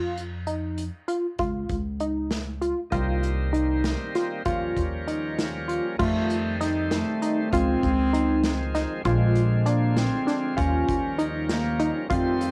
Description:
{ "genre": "progressive instrumental, band music in an uneven meter", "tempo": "196 BPM (eighths)", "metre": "5/8", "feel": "straight", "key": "Eb mixolydian", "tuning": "A4 = 440 Hz", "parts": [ { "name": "tight sequenced synth", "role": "arpeggios", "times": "0.0-12.5 s", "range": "D4 to F4", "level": "-30 LUFS", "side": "equal", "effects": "chorus" }, { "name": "upright bass", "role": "bass", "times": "0.0-12.5 s", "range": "Bb1 to F2", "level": "-30 LUFS", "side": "equal", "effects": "none" }, { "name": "unplugged drum kit", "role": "drums", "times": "0.2-12.5 s", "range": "crash cymbal, hi-hat, kick drum, snare drum", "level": "-34 LUFS", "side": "equal", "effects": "cassette tape" }, { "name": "bright tonewheel organ", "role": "accompaniment", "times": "2.9-12.5 s", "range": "D3 to C5", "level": "-34 LUFS", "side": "equal", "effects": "overdrive, slow rotary speaker" }, { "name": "mellow bass clarinet", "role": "melody", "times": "6.0-12.5 s", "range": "Ab3 to Db4", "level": "-29 LUFS", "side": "equal", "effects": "cassette tape" } ], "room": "light reverb", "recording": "home recording on cassette", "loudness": "-25 LUFS", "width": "mono", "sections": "0.0-6.0 A section; 6.0-12.5 B section", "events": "none", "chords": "0.0 Ebsus2/F; 1.4 Db; 2.9 Cm7; 4.5 Eb7; 6.0 F7; 7.5 Dbmaj7; 9.1 Bb7; 10.6 Eb7" }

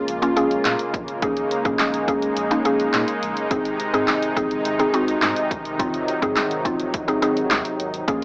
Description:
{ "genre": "dance-pop", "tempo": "105 BPM", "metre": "4/4", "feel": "straight", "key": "unclear", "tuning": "A4 = 440 Hz", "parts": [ { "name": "mallet-like synth pluck", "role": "accompaniment", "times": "0.0-8.2 s", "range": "Bb3 to Ab4", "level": "-22 LUFS", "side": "equal", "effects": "chorus, sidechain pumping" }, { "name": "soft supersaw", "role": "sustained chords", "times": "0.0-8.2 s", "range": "C3 to F4", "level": "-24 LUFS", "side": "equal", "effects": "sidechain pumping" }, { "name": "warm sub bass", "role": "bass", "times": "0.1-8.2 s", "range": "Gb1 to Bb2", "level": "-38 LUFS", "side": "equal", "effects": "sidechain pumping" }, { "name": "punchy analog drum machine", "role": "drums", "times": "0.1-8.2 s", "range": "handclaps, hi-hat, kick drum, snare drum", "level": "-24 LUFS", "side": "equal", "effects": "cassette tape" } ], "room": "moderate studio reverb, RT60 0.6 s", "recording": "home recording on cassette, AM radio sound", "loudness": "-19 LUFS", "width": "side -36 dB against mid", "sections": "0.0-8.2 A section", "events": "none", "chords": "0.0 Bbm7; 3.5 Ab" }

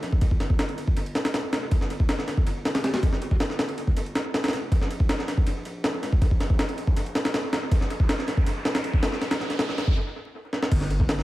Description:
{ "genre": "drum and bass, jungle", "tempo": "160 BPM", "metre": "4/4", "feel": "straight", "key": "unclear", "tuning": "A4 = 440 Hz", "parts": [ { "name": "saturated sub bass", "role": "bass", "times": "0.0-11.2 s", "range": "F1 to Db2", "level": "-36 LUFS", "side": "equal", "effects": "high-pass filter" }, { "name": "jungle sampler-style drum kit", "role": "drums", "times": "0.0-11.2 s", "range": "crash cymbal, kick drum, ride cymbal, snare drum", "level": "-23 LUFS", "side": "equal", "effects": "overdrive, dub echo" }, { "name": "riser", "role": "sound effects", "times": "5.8-10.0 s", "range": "none", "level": "-38 LUFS", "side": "equal", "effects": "none" } ], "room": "light reverb", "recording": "echo-heavy mix, vinyl crackle", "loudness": "-22 LUFS", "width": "side -16 dB against mid", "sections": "0.0-10.7 A section", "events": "build-up 0.0-10.7; riser 5.8-10.0; stop 10.0-10.7; drum fill 10.5", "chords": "none" }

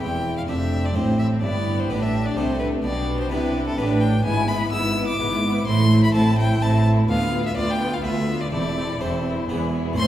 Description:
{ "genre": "classical, baroque-style concerto movement with solo episodes", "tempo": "127 BPM", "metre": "3/4", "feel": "straight", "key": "A minor from 4.3 s", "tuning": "A4 = 440 Hz", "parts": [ { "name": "clear violin", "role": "melody", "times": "0.0-10.1 s", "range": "A4 to E6", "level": "-27 LUFS", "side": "left 1 dB", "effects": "none" }, { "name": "rich chamber violin section", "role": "melody", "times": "0.0-10.1 s", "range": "E4 to C6", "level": "-36 LUFS", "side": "left 5 dB", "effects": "none" }, { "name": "rich chamber violin section", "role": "second line", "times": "0.0-10.1 s", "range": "C4 to C5", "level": "-28 LUFS", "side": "left 3 dB", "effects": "none" }, { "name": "harpsichord", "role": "accompaniment", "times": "0.0-10.1 s", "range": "D2 to B4", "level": "-28 LUFS", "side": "equal", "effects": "none" }, { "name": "rich studio viola section", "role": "accompaniment", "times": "0.0-10.1 s", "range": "A3 to D4", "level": "-28 LUFS", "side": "right 1 dB", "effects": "none" }, { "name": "rich chamber double bass section", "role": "bass", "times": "0.0-10.1 s", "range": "E1 to D2", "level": "-25 LUFS", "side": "right 2 dB", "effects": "none" }, { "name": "warm studio cello section", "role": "bass", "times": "0.0-10.1 s", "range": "D2 to C3", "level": "-26 LUFS", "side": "right 1 dB", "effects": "none" } ], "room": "wet recital hall reverb, RT60 1.4 s", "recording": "heard from further back in the room", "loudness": "-19 LUFS", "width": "side -12 dB against mid", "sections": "0.0-10.0 A section", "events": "none", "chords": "0.0 C/E; 1.4 G; 2.8 G/B; 4.3 E7/G#; 5.7 Am; 7.1 Bdim/D; 8.5 Am/E; 9.5 E" }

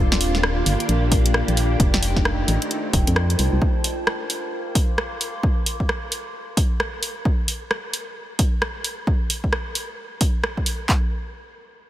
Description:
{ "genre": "UK garage, two-step garage", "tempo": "132 BPM", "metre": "4/4", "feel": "swing 61% on 16ths", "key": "Bb major", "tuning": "A4 = 438 Hz", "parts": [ { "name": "soft string machine", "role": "sustained chords", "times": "0.0-3.6 s", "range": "A3 to G4", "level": "-26 LUFS", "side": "equal", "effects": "ensemble chorus, sidechain pumping" }, { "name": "organ-like FM bass", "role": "bass", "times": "0.0-3.6 s", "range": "Eb1 to F2", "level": "-21 LUFS", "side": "equal", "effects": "tube saturation" }, { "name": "warbly tape-like pad", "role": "texture", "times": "0.0-7.3 s", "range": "Eb3 to D6", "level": "-32 LUFS", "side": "equal", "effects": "chorus, built-in reverb, sidechain pumping" }, { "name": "garage drum kit", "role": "drums", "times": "0.1-10.8 s", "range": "hi-hat, rim click, snare drum", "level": "-25 LUFS", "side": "equal", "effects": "none" }, { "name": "punchy analog drum machine", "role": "drums", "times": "1.1-11.0 s", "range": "handclaps, kick drum", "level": "-21 LUFS", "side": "equal", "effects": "none" } ], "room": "moderate huge ambient reverb, RT60 4.0 s", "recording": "dreamy mix soaked in reverb", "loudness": "-19 LUFS", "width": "side -13 dB against mid", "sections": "0.0-10.9 A section; 10.9-11.9 B section", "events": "fade-out on ambient pad 0.0-7.3; filter sweep on FM bass 0.0-3.6", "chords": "0.0 Ebmaj9; 1.8 F13; 3.6 Bbmaj9; 7.3 N.C." }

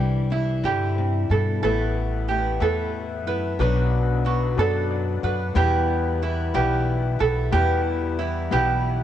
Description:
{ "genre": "folk", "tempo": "61 BPM (dotted quarters)", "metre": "6/8", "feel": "straight", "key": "E minor", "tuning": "A4 = 437 Hz", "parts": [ { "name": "fingerpicked steel-string acoustic guitar", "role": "accompaniment", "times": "0.0-3.6 s", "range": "B2 to E4", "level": "-32 LUFS", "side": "left 8 dB", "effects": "cassette tape" }, { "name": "picked old ladder-braced acoustic guitar", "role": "accompaniment", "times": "0.0-9.0 s", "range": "E2 to F#4", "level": "-29 LUFS", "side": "left 7 dB", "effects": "cassette tape" }, { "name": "ukulele", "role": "arpeggios", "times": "0.0-9.0 s", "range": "E4 to B4", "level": "-26 LUFS", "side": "right 7 dB", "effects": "cassette tape" }, { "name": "upright bass", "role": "bass", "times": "0.0-9.0 s", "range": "A1 to G2", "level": "-24 LUFS", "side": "equal", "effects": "none" }, { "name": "felt-muted upright piano", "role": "accompaniment", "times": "1.6-9.0 s", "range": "A1 to D5", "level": "-29 LUFS", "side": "left 8 dB", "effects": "cassette tape" } ], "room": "light reverb, studio reverb", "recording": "home recording on cassette", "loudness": "-20 LUFS", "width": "side -11 dB against mid", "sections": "0.0-9.0 A section", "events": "build-up 0.0-9.0; felt piano fill 4.6-5.6", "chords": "0.0 Cadd9; 1.6 Asus2; 3.6 Bm; 5.6 Em" }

